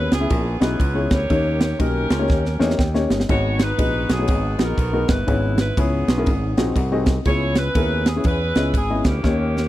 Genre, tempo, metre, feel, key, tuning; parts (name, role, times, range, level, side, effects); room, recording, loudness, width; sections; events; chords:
uptempo gospel; 121 BPM; 4/4; swing 62% on 8ths; A4 = 439 Hz
bright saxophone section; melody; 0.0-9.7 s; A#3 to C#5; -26 LUFS; right 1 dB; tape echo
warm baby grand piano; accompaniment; 0.0-9.7 s; G#2 to G5; -23 LUFS; left 3 dB
fingered electric bass; bass; 0.0-9.7 s; G1 to E2; -23 LUFS; equal
crisp fusion drum kit; drums; 0.1-9.7 s; crash cymbal, kick drum, ride cymbal, snare drum; -21 LUFS; right 1 dB
small room ambience; dry, close 1970s-style studio recording; -17 LUFS; side -15 dB against mid
0.0-9.7 A section
drum fill 2.3-3.3, 9.2-9.7; grand piano fill 2.5-3.3, 6.5-7.3
0.0 C#m7; 1.3 D#7; 3.3 G#m7; 5.3 E6/G#; 6.3 G#7; 7.3 C#m7